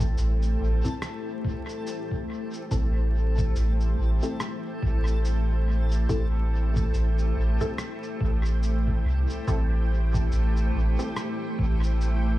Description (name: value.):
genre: ambient dub.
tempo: 71 BPM.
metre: 4/4.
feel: swing 58% on 16ths.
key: A minor.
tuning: A4 = 443 Hz.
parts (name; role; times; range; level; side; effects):
granular cloud pad; sustained chords; 0.0-12.4 s; A3 to G5; -33 LUFS; left 1 dB; built-in reverb.
soft dub sub bass; bass; 0.0-12.4 s; A1 to C2; -23 LUFS; equal; none.
electronic cabasa and rim click; drums; 0.0-12.2 s; none; -40 LUFS; equal; small room ambience, dub echo.
electronic kick drum; drums; 0.0-11.8 s; none; -28 LUFS; equal; small room ambience.
backwards swelling texture; texture; 0.0-12.4 s; A3 to A4; -38 LUFS; left 2 dB; built-in reverb.
filtered dub chord stab; stabs; 0.8-11.1 s; C4 to A4; -36 LUFS; left 1 dB; phaser, analog chorus, cassette tape, dub echo.
room: little or no reverb.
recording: echo-heavy mix, vinyl crackle, studio ambience.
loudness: -23 LUFS.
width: side -16 dB against mid.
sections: 0.0-12.4 A section.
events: none.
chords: 0.0 Am7.